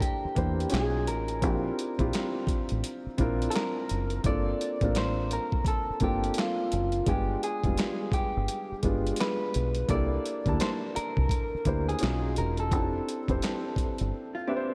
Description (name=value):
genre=R&B, neo-soul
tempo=85 BPM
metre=4/4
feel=swing 62% on 16ths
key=G dorian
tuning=A4 = 438 Hz
part: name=electric guitar through a small old amp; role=melody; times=0.0-14.0 s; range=F4 to D5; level=-36 LUFS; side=equal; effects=slapback echo
part: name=warm baby grand piano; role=accompaniment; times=0.0-14.7 s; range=G3 to A5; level=-34 LUFS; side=equal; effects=slapback echo
part: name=boom bap sampler-style drum kit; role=drums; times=0.0-14.1 s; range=handclaps, hi-hat, kick drum, snare drum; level=-34 LUFS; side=equal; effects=none
part: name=deep dub fingered electric bass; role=bass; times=0.2-14.1 s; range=E1 to E2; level=-33 LUFS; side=equal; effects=none
part: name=vintage hollow-body jazz guitar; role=second line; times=14.3-14.7 s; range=F4 to G4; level=-39 LUFS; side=equal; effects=none
room=moderate lush hall reverb, RT60 2.8 s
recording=big arena sound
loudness=-29 LUFS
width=mono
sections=0.0-14.7 A section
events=none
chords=0.0 C9; 0.7 B69; 1.4 Bb69; 4.2 Gm9; 7.1 G7b9; 9.9 C9; 12.0 B69; 12.7 Fmaj7